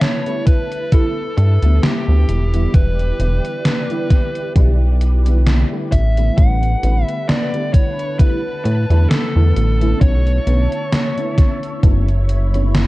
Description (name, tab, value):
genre	vaporwave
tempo	66 BPM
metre	4/4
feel	swing 55% on 16ths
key	E dorian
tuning	A4 = 441 Hz
part	fuzz lead guitar	melody	0.0-11.8 s	G4 to F#5	-25 LUFS	equal	distortion, vintage 12-bit sampler grit, tape echo
part	soft string machine	sustained chords	0.0-12.9 s	D3 to B5	-30 LUFS	equal	phaser, ensemble chorus
part	gated 80s digital drum machine	drums	0.0-12.9 s	hi-hat, snare drum	-20 LUFS	equal	gated reverb, gated reverb snare, overdrive, vintage 12-bit sampler grit
part	FM electric piano with soft pad layer	accompaniment	0.3-12.9 s	D3 to E4	-25 LUFS	equal	phaser, ensemble chorus, vintage 12-bit sampler grit
part	electronic kick drum	drums	0.5-12.0 s	none	-12 LUFS	equal	overdrive, vintage 12-bit sampler grit
part	chorused synth bass	bass	1.4-12.9 s	E1 to A2	-14 LUFS	equal	tube saturation
room	little or no reverb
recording	dark, warm production, cassette tape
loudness	-14 LUFS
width	side -19 dB against mid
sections	0.0-12.9 A section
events	none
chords	0.0 G69; 2.3 Em7; 5.9 A9sus4; 10.0 Bm11